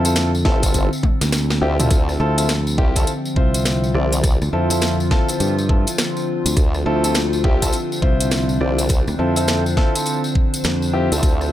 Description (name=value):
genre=glitch hop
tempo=103 BPM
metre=4/4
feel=swing 62% on 16ths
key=D minor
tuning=A4 = 439 Hz
part: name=warbly tape-like pad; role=sustained chords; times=0.0-11.5 s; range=D3 to A4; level=-26 LUFS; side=equal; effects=chorus, built-in reverb, sidechain pumping
part: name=warm concert grand piano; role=stabs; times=0.0-11.5 s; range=C4 to D5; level=-24 LUFS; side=left 1 dB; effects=sidechain pumping, digital delay
part: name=modern bright fingered electric bass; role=bass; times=0.0-11.1 s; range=C2 to G2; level=-20 LUFS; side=equal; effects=tube saturation
part: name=drum and bass drum kit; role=drums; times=0.0-11.5 s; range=hi-hat, rim click, snare drum, toms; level=-23 LUFS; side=equal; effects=none
part: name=tambourine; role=percussion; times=0.1-11.5 s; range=none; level=-28 LUFS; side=left 1 dB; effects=none
part: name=formant-sweep wobble bass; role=bass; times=0.5-11.5 s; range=G1 to D2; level=-21 LUFS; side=equal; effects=chorus
part: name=electronic kick drum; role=drums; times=0.5-11.4 s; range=none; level=-17 LUFS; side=equal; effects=none
part: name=warbly tape-like pad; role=texture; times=3.2-11.5 s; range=D4 to C5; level=-28 LUFS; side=left 2 dB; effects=chorus, built-in reverb, phaser, sidechain pumping
room=digital ambience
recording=none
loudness=-16 LUFS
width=side -13 dB against mid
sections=0.0-11.5 A section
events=drum fill 1.0-1.9; kick drops out 1.3-1.9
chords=0.0 Dm7